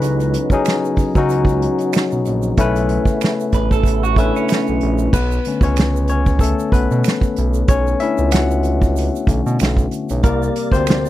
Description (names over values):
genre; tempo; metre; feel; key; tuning
R&B, neo-soul; 94 BPM; 4/4; swing 54% on 16ths; B minor from 5.1 s; A4 = 439 Hz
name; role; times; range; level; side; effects
barky tine electric piano; accompaniment; 0.0-11.1 s; D3 to F#5; -19 LUFS; left 4 dB; overdrive
percussive tonewheel organ; sustained chords; 0.0-5.1, 10.2-11.1 s; C3 to D5; -26 LUFS; right 6 dB; slow rotary speaker, overdrive, chorus vibrato
smooth synth bass; bass; 0.0-11.1 s; A1 to B2; -19 LUFS; right 1 dB; none
unplugged drum kit; drums; 0.0-11.1 s; crash cymbal, hi-hat, kick drum, snare drum; -17 LUFS; right 1 dB; none
tube shaker and finger snaps; percussion; 0.0-11.1 s; none; -32 LUFS; right 21 dB; none
electric guitar through a small old amp; second line; 3.5-5.1 s; C#4 to B4; -23 LUFS; right 10 dB; spring reverb
room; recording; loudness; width
little or no reverb; dry, close 1970s-style studio recording; -14 LUFS; side -14 dB against mid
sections
0.0-5.1 A section; 5.1-11.1 B section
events
tine electric piano solo 5.1-11.1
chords
0.0 C#9sus4; 2.6 B9sus4; 5.1 Bm9; 10.2 C7sus2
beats
| 0.03 0.66 1.30 1.94 | 2.58 3.22 3.85 4.49 | 5.13 5.77 6.41 7.05 | 7.68 8.32 8.96 9.60 | 10.24 10.88